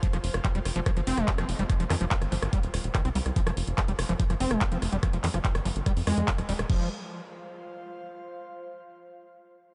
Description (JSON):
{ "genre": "psychedelic trance", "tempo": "144 BPM", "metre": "4/4", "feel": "straight", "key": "unclear", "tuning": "A4 = 440 Hz", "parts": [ { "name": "screaming distorted acid line", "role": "riff", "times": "0.0-6.9 s", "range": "Eb3 to C4", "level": "-34 LUFS", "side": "equal", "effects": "distortion, chorus, sidechain pumping, analog delay" }, { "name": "electronic kick drum", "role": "drums", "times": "0.0-6.8 s", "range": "none", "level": "-29 LUFS", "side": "equal", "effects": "none" }, { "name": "techno drum kit", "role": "drums", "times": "0.0-6.8 s", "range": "crash cymbal, handclaps, hi-hat, rim click", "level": "-36 LUFS", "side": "equal", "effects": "none" }, { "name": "airy breathy pad", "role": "texture", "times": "0.0-8.3 s", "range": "F4 to F5", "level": "-47 LUFS", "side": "equal", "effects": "chorus, sidechain pumping" }, { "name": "tight sequencer bass", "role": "bass", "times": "0.1-6.9 s", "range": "Eb1 to F2", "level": "-32 LUFS", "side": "equal", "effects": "none" } ], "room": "light reverb", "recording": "nothing above 10.8 kHz", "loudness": "-27 LUFS", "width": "mono", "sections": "0.0-6.7 A section; 6.7-8.4 B section", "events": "filter sweep on acid bass 0.0-6.7", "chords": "0.0 F5" }